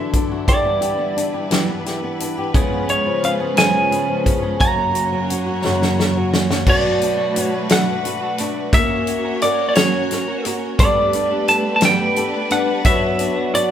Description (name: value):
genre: six-eight pop ballad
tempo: 58 BPM (dotted quarters)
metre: 6/8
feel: straight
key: B minor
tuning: A4 = 439 Hz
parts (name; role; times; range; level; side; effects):
- lightly driven lead guitar; melody; 0.0-13.7 s; C#5 to A#5; -19 LUFS; right 1 dB; none
- flamenco guitar; accompaniment; 0.0-13.7 s; F#2 to A#4; -23 LUFS; left 3 dB; none
- warm studio string section; sustained chords; 0.0-13.7 s; F#3 to C#5; -25 LUFS; equal; none
- natural country drum kit; drums; 0.1-13.7 s; crash cymbal, hi-hat, kick drum, snare drum; -19 LUFS; equal; none
- twelve-string electric guitar; arpeggios; 2.5-13.7 s; F#2 to A#4; -28 LUFS; right 4 dB; none
room: wet studio reverb, RT60 0.8 s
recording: band playing live in one room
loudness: -16 LUFS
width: side -10 dB against mid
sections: 0.0-6.7 A section; 6.7-13.7 B section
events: drum fill 5.6-6.7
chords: 0.5 Em7; 2.5 C#7; 4.6 F#; 6.7 Bm7; 8.7 F#/A#; 10.8 Gadd9; 12.8 Bm/F#